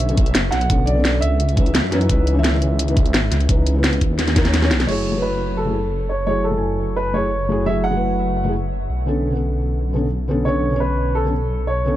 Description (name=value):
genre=liquid drum and bass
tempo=172 BPM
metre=4/4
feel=straight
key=F# minor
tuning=A4 = 440 Hz
part: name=dark grand piano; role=melody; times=0.0-12.0 s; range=A4 to F#5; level=-24 LUFS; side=right 2 dB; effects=ping-pong delay
part: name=felt-muted upright piano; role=accompaniment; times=0.0-12.0 s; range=D3 to G#5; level=-23 LUFS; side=left 1 dB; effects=low-pass filter, ping-pong delay
part: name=swelling detuned saw bass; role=bass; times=0.0-12.0 s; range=F#1 to F#2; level=-21 LUFS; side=equal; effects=tube saturation
part: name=drum and bass drum kit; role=drums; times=0.0-5.0 s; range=crash cymbal, hi-hat, snare drum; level=-21 LUFS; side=equal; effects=none
part: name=electronic kick drum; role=drums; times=0.2-4.4 s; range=none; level=-18 LUFS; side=equal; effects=none
room=digital ambience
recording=dark, warm production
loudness=-16 LUFS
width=side -13 dB against mid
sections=0.0-4.9 A section; 4.9-12.0 B section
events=drum fill 4.2-4.9; band accent 4.8; filter sweep on felt piano 4.9-12.0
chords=0.0 Bm9; 1.4 C#m9; 4.9 F#m9; 8.9 Bm9